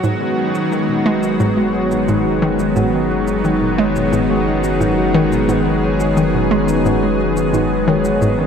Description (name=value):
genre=ambient, sequencer-driven space music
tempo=88 BPM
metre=4/4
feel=straight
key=unclear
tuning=A4 = 443 Hz
part: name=lush unison pad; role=sustained chords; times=0.0-8.5 s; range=D#3 to G#4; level=-16 LUFS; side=equal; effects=chorus
part: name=concert harp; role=arpeggios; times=0.0-8.5 s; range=C#4 to C#5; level=-24 LUFS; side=moving between left 3 dB and right 3 dB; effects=auto-pan, analog delay
part: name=hollow square pluck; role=riff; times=0.0-8.3 s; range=G#2 to G#3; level=-20 LUFS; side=equal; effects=chorus, analog delay
part: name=round analog bass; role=bass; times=0.0-8.5 s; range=F#1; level=-26 LUFS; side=equal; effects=none
part: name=electronic shaker and toms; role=percussion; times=0.0-8.4 s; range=none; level=-32 LUFS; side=left 3 dB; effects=analog delay
room=wet lush hall reverb, RT60 3.3 s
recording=dreamy mix soaked in reverb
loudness=-14 LUFS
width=side -7 dB against mid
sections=0.0-8.5 A section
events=fade-in on harp 0.0-8.5; fade-in on drum 0.0-8.5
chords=0.0 G#m7/F#